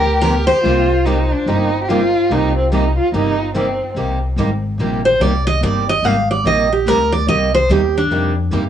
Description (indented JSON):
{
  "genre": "acoustic string swing (jazz manouche)",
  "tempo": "145 BPM",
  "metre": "4/4",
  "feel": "swing 62% on 8ths",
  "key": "C minor",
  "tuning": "A4 = 440 Hz",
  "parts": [
    { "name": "picked steel-string acoustic guitar", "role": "melody", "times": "0.0-8.3 s", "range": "D4 to F5", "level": "-17 LUFS", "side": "right 1 dB", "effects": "cassette tape, plate reverb" },
    { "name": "warm violin", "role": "second line", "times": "0.0-3.9 s", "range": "C4 to G4", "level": "-18 LUFS", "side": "right 1 dB", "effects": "cassette tape, plate reverb, tape echo" },
    { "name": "picked steel-string acoustic guitar", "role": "accompaniment", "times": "0.0-8.6 s", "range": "C3 to G4", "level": "-22 LUFS", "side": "left 3 dB", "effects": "cassette tape, plate reverb" },
    { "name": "picked steel-string acoustic guitar", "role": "accompaniment", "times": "0.0-8.6 s", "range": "C3 to G4", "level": "-25 LUFS", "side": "right 7 dB", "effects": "cassette tape, plate reverb" },
    { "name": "upright bass", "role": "bass", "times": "0.0-8.7 s", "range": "G1 to G2", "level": "-19 LUFS", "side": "equal", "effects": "none" }
  ],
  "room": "moderate booth ambience, RT60 0.2 s",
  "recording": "home recording on cassette",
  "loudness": "-13 LUFS",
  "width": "side -9 dB against mid",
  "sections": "0.0-4.0 A section; 4.0-8.7 B section",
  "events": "steel-string acoustic guitar solo 4.0-8.7",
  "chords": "0.0 G7#9; 0.6 Cm7",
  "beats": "0.22 | 0.64 1.05 1.47 1.89 | 2.30 2.71 3.13 3.54 | 3.96 4.37 4.79 5.20 | 5.62 6.03 6.44 6.86 | 7.27 7.69 8.10 8.52"
}